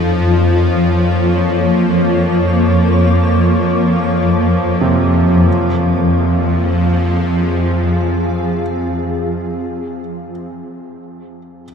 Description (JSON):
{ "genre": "dark ambient drone", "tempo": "free time", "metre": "none", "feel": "none", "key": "F minor", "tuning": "A4 = 440 Hz", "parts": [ { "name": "granular cloud pad", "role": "sustained chords", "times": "0.0-9.0 s", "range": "F2 to Db5", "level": "-15 LUFS", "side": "left 1 dB", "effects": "built-in reverb" }, { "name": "warm concert grand piano", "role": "arpeggios", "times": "0.0-11.7 s", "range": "C3 to F3", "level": "-22 LUFS", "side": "right 3 dB", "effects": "ping-pong delay" }, { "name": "bowed-like drone", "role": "drone", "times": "0.0-8.6 s", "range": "F2 to F3", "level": "-17 LUFS", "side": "equal", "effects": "built-in reverb" } ], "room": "wet cathedral reverb, RT60 6.2 s", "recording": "in a vast, echoing space", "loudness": "-12 LUFS", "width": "side -6 dB against mid", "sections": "0.0-5.5 A section; 5.5-9.1 B section", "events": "none", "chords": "0.0 Db/F; 5.5 Fm", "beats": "free time" }